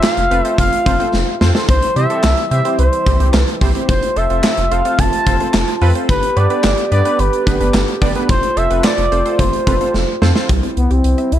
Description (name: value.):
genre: synth-pop.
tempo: 109 BPM.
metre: 4/4.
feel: straight.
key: C major.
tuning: A4 = 440 Hz.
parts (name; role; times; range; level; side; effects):
expressive synth lead; melody; 0.0-11.4 s; B3 to A5; -18 LUFS; equal; chorus.
warm analog keys; accompaniment; 0.0-10.5 s; B3 to D5; -22 LUFS; right 1 dB; chorus, tremolo.
warm woodwind section; sustained chords; 0.0-11.4 s; C3 to G4; -24 LUFS; right 2 dB; stereo widening.
gated 80s drum kit; drums; 0.0-11.4 s; handclaps, hi-hat, kick drum, snare drum; -17 LUFS; equal; none.
round analog bass; bass; 0.2-11.4 s; F1 to C3; -16 LUFS; equal; none.
resonant blip pluck; arpeggios; 10.5-11.3 s; G3 to E5; -27 LUFS; right 2 dB; chorus, tape echo.
room: light reverb, small room ambience.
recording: dark, warm production.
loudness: -12 LUFS.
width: side -11 dB against mid.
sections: 0.0-10.5 A section.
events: drum fill 1.1-1.7, 9.9-10.5.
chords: 0.0 F; 1.7 C; 3.9 F; 6.1 G; 8.3 F; 10.5 C.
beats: 0.04 0.59 1.14 | 1.69 2.24 2.79 3.34 | 3.89 4.44 4.99 5.54 | 6.09 6.64 7.19 7.74 | 8.29 8.84 9.39 9.94 | 10.49 11.04.